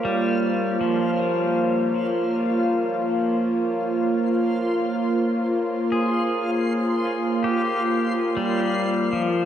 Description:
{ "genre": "ambient", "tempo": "79 BPM", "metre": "4/4", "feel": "swing 60% on 16ths", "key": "Bb dorian", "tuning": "A4 = 438 Hz", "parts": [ { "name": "warm analog pad", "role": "sustained chords", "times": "0.0-9.5 s", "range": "Bb3 to Db5", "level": "-22 LUFS", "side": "right 1 dB", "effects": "chorus" }, { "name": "pedal steel guitar", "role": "arpeggios", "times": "0.0-9.5 s", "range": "F3 to Ab4", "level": "-27 LUFS", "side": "left 3 dB", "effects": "diffuse ambient delay" }, { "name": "backwards swelling texture", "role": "texture", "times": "0.0-9.5 s", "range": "F4 to C6", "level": "-31 LUFS", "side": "equal", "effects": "built-in reverb" } ], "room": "wet plate reverb, RT60 3.5 s", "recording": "dreamy mix soaked in reverb", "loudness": "-20 LUFS", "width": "side -10 dB against mid", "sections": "0.0-9.5 A section", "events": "none", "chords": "0.0 Bbm7" }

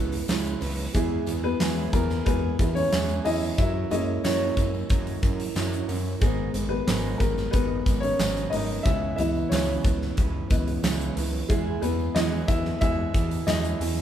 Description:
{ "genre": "piano-driven pop", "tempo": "91 BPM", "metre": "4/4", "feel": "straight", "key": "unclear", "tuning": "A4 = 440 Hz", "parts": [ { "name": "dark upright piano", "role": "accompaniment", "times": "0.0-14.0 s", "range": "E3 to E5", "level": "-28 LUFS", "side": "left 2 dB", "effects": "none" }, { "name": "fingerpicked steel-string acoustic guitar", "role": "riff", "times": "0.0-14.0 s", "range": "G#2 to B4", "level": "-31 LUFS", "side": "right 7 dB", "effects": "none" }, { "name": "fat analog bass", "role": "bass", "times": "0.0-14.0 s", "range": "G#1 to F#2", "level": "-30 LUFS", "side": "equal", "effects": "none" }, { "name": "huge arena drum kit", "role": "drums", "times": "0.1-14.0 s", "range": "handclaps, hi-hat, kick drum, snare drum", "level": "-27 LUFS", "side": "equal", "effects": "none" }, { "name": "tambourine", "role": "percussion", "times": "0.1-14.0 s", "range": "none", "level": "-46 LUFS", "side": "left 4 dB", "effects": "none" } ], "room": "moderate large studio reverb, RT60 1.1 s", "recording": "band playing live in one room", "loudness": "-23 LUFS", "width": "side -10 dB against mid", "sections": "0.0-14.0 A section", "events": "upright piano solo 0.0-14.0", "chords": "0.0 C#m7; 0.9 E; 3.6 F#7; 6.2 G#madd9; 8.9 C#m7; 11.5 E" }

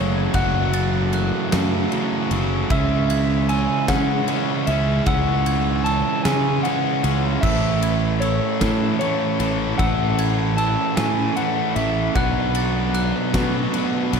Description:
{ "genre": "post-rock", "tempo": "51 BPM (dotted quarters)", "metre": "6/8", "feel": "straight", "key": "unclear", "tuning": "A4 = 439 Hz", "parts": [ { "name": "electric slide guitar", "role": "melody", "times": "0.0-14.2 s", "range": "C#5 to A5", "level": "-25 LUFS", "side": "left 2 dB", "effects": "slapback echo" }, { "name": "pedal harmonium", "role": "sustained chords", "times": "0.0-14.2 s", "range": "C#3 to E5", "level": "-35 LUFS", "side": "right 4 dB", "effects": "none" }, { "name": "twelve-string electric guitar", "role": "arpeggios", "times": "0.0-14.2 s", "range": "F#2 to A3", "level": "-31 LUFS", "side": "left 2 dB", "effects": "none" }, { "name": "fuzz guitar", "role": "riff", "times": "0.0-14.2 s", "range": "F#2 to F#4", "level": "-24 LUFS", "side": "right 14 dB", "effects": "distortion" }, { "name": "overdriven electric guitar", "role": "riff", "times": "0.0-14.2 s", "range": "F#2 to C#4", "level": "-26 LUFS", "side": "left 12 dB", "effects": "none" }, { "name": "fingered electric bass", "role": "bass", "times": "0.0-14.2 s", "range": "F#1 to C#3", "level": "-23 LUFS", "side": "equal", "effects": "none" }, { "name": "glockenspiel with hard plastic mallets", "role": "arpeggios", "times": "0.3-13.7 s", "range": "E6 to A6", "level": "-34 LUFS", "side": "right 3 dB", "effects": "slapback echo" }, { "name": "huge arena drum kit", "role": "drums", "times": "0.3-14.2 s", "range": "crash cymbal, kick drum, ride cymbal, snare drum", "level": "-27 LUFS", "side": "left 1 dB", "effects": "none" } ], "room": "small room ambience", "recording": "none", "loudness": "-18 LUFS", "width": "side -6 dB against mid", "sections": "0.0-14.2 A section", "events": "none", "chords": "0.0 F#m7; 2.7 C#m7; 7.4 Amaj7; 12.2 Bm7" }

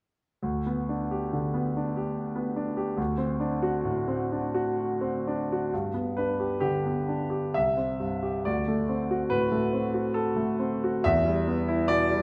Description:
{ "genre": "classical, romantic character piece for solo piano", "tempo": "60-73 BPM", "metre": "3/4", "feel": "rubato", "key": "G major", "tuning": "A4 = 440 Hz", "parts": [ { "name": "clear concert grand piano", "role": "solo", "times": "0.4-12.2 s", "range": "C2 to E5", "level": "-28 LUFS", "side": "equal", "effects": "none" } ], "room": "wet recital hall reverb, RT60 1.3 s", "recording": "none", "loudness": "-28 LUFS", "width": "mono", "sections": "0.4-5.7 A section; 5.7-12.2 B section", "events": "none", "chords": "0.4 G/D; 3.0 D7; 5.7 G; 7.6 C; 8.5 D7; 11.1 Em" }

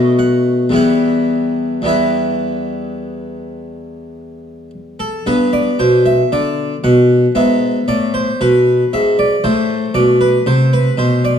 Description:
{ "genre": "classical, baroque-style suite movement for harpsichord", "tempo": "53-58 BPM", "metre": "4/4", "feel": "rubato", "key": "E minor, G major from 5.3 s", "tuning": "A4 = 439 Hz", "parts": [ { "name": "harpsichord", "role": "solo", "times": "0.0-11.4 s", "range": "E2 to F#5", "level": "-13 LUFS", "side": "equal", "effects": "none" } ], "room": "moderate recital hall reverb, RT60 1.4 s", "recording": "dark, warm production", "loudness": "-12 LUFS", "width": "side -8 dB against mid", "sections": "0.0-5.3 A section; 5.3-11.4 A section", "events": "none", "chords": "0.0 B7; 0.7 Em; 5.3 G; 7.4 G#dim; 9.4 Am" }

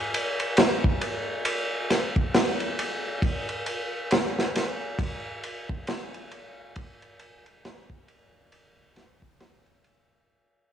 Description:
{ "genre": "trip hop", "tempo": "68 BPM", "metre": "4/4", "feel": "swing 60% on 16ths", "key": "none", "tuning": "none", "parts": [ { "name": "crunchy breakbeat drum kit", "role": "drums", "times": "0.1-10.1 s", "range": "kick drum, ride cymbal, snare drum", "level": "-24 LUFS", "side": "equal", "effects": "none" } ], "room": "moderate echo chamber reverb, RT60 2.2 s", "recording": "vinyl crackle", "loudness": "-24 LUFS", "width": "side -9 dB against mid", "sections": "0.0-10.3 A section", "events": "fade-out 0.0-10.3", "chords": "none" }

